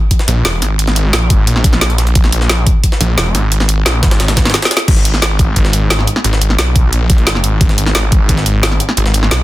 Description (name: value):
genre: dark technical drum and bass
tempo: 176 BPM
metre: 4/4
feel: straight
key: G# minor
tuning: A4 = 438 Hz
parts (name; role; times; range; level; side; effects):
- drum and bass drum kit; drums; 0.1-9.4 s; crash cymbal, hi-hat, snare drum; -16 LUFS; equal; none
- electronic kick drum; drums; 0.1-8.4 s; none; -12 LUFS; equal; overdrive
- jungle sampler-style drum kit; drums; 0.1-9.4 s; hi-hat, snare drum; -22 LUFS; equal; high-pass filter on hats, high-pass filter on snare, high-pass filter on room
- snarling distorted saw bass; bass; 0.3-9.4 s; E1 to B1; -13 LUFS; equal; distortion, tube saturation
room: little or no reverb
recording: dense, heavily limited modern master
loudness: -10 LUFS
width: side -16 dB against mid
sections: 0.0-4.9 A section; 4.9-9.4 A section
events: drop 0.0-4.9, 4.9-9.4; kick drops out 4.5-4.9; drum fill 4.5-4.9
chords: none